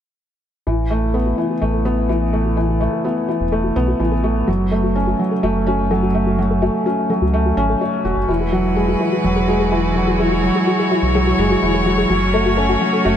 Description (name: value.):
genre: piano and strings electronica.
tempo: 126 BPM.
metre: 4/4.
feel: straight.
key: unclear.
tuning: A4 = 443 Hz.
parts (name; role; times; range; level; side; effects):
soft round pluck; arpeggios; 0.7-13.1 s; F#4 to A4; -25 LUFS; left 3 dB; chorus, ping-pong delay.
felt-muted upright piano; riff; 0.7-13.2 s; E3 to C#5; -17 LUFS; equal; ping-pong delay.
round analog bass; bass; 0.7-13.2 s; E1 to C#2; -21 LUFS; right 1 dB; none.
rich string quartet; sustained chords; 8.3-13.2 s; G#3 to C#5; -21 LUFS; equal; none.
room: light reverb, studio reverb.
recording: nothing above 10.9 kHz.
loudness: -15 LUFS.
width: side -9 dB against mid.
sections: 0.7-13.2 A section.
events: filter sweep on synth arpeggio sound 0.7-13.2.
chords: 0.7 Asus2; 4.5 F#m; 8.3 Eadd9; 12.1 F#m.